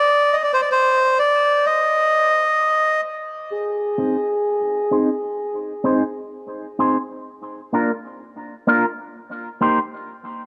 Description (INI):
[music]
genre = reggae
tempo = 64 BPM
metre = 4/4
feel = straight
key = unclear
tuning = A4 = 440 Hz
[part]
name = melodica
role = melody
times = 0.0-5.0 s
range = Ab4 to Eb5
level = -20 LUFS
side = equal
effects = low-pass filter, tape echo
[part]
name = electric guitar with an envelope filter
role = accompaniment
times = 4.0-9.8 s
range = Bb3 to C5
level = -23 LUFS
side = equal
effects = phaser, low-pass filter, tape echo
[sound]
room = moderate plate reverb, RT60 2.5 s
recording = none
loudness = -20 LUFS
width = mono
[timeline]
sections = 0.0-3.5 A section; 3.5-10.5 B section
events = break 0.0-3.5, 3.5-10.5; filter sweep 3.5-10.5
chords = 0.0 N.C.; 3.5 Ab/C; 7.3 Bb; 9.1 Eb6